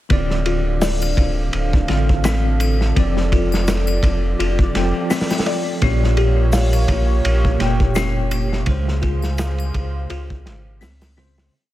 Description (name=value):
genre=trip hop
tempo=84 BPM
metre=4/4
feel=swing 57% on 16ths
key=D minor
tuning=A4 = 440 Hz
part: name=bell-like tine electric piano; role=accompaniment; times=0.1-11.5 s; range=Bb2 to G5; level=-24 LUFS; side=equal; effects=fast stereo tremolo, tape echo
part: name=dark analog pad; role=sustained chords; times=0.1-11.5 s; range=Bb3 to F5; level=-27 LUFS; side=right 2 dB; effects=chorus
part: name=music box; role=arpeggios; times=0.1-11.5 s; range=C4 to F5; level=-28 LUFS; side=left 6 dB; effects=low-pass filter, tape echo
part: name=warm sub bass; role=bass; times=0.1-11.5 s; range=D1 to C#2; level=-20 LUFS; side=equal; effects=tube saturation
part: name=crunchy breakbeat drum kit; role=drums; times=0.1-11.5 s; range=hi-hat, kick drum, ride cymbal, snare drum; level=-21 LUFS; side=equal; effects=none
part: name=egg shaker and triangle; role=percussion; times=0.8-11.1 s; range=none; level=-36 LUFS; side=left 5 dB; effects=none
room=studio reverb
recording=none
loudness=-16 LUFS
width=side -15 dB against mid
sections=0.1-11.5 groove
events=filter sweep on music box 0.1-11.5; fade-out 7.7-11.5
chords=0.1 Dm7; 3.0 F6; 5.8 Bbm6; 8.7 C#maj7